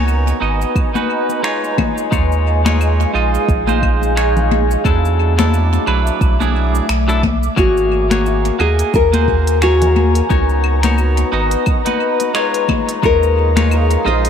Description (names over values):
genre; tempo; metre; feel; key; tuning
sunset chillout; 88 BPM; 4/4; swing 57% on 16ths; unclear; A4 = 440 Hz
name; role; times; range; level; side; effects
clean electric guitar; accompaniment; 0.0-14.3 s; F#3 to Eb5; -20 LUFS; moving between left 8 dB and right 9 dB; auto-pan, low-pass filter, tape echo
ethereal airy pad; sustained chords; 0.0-14.3 s; A3 to D6; -20 LUFS; left 1 dB; ensemble chorus, built-in reverb
warm sub bass; bass; 0.0-14.3 s; Ab1 to E2; -16 LUFS; right 1 dB; none
deep house drum kit; drums; 0.1-14.3 s; cabasa, claves, finger snaps, hi-hat; -27 LUFS; left 1 dB; small room ambience, tape echo
electronic kick drum; drums; 0.8-13.2 s; none; -18 LUFS; right 1 dB; small room ambience
congas; percussion; 1.0-13.7 s; none; -22 LUFS; left 7 dB; tape echo
nylon-string guitar; melody; 7.6-14.3 s; Gb4 to C5; -17 LUFS; left 3 dB; tape echo
room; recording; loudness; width
light reverb, digital ambience; echo-heavy mix; -13 LUFS; side -8 dB against mid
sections
0.0-14.3 A section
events
none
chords
0.0 Db9sus4; 1.8 Eb9sus4; 4.9 E9sus4; 7.6 Ab9sus4; 10.3 Db9sus4; 12.7 Eb9sus4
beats
0.08 0.76 1.44 | 2.12 2.81 3.49 4.17 | 4.85 5.53 6.21 6.90 | 7.58 8.26 8.94 9.62 | 10.31 10.99 11.67 12.35 | 13.03 13.71